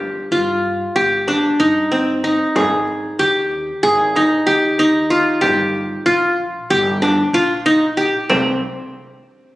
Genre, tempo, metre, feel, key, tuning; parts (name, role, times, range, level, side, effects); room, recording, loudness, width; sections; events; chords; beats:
contemporary instrumental, chamber music in an uneven meter; 188 BPM (eighths); 9/8; straight; A4 = 440 Hz
qanun; arpeggios; 0.0-8.6 s; C4 to Ab4; -15 LUFS; equal
upright bass; bass; 0.0-8.6 s; G1 to G2; -29 LUFS; equal
frame drum; percussion; 0.0-8.6 s; -26 LUFS; left 1 dB
moderate recital hall reverb, RT60 1.5 s; recorded on a phone in the room, studio reverb; -14 LUFS; side -17 dB against mid
0.0-8.3 A section; 8.3-9.6 B section
0.0 Cmadd9/G; 2.6 Ab5; 5.4 Eb/G; 8.3 N.C.
0.00 0.32 0.64 0.96 1.28 1.60 1.92 2.24 | 2.56 2.88 3.19 3.51 3.83 4.15 4.47 4.79 5.11 | 5.43 5.75 6.07 6.38 6.70 7.02 7.34 7.66 7.98 | 8.30